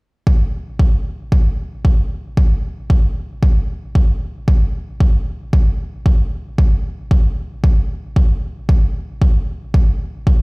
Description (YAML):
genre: techno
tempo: 114 BPM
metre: 4/4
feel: straight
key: none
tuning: none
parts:
  - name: electronic kick drum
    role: drums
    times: 0.3-10.4 s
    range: none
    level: -13 LUFS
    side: equal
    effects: overdrive
room: little or no reverb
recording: played on a big sound system in a bare room, stone room reverb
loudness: -15 LUFS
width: side -31 dB against mid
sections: 0.3-10.4 A section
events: none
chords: none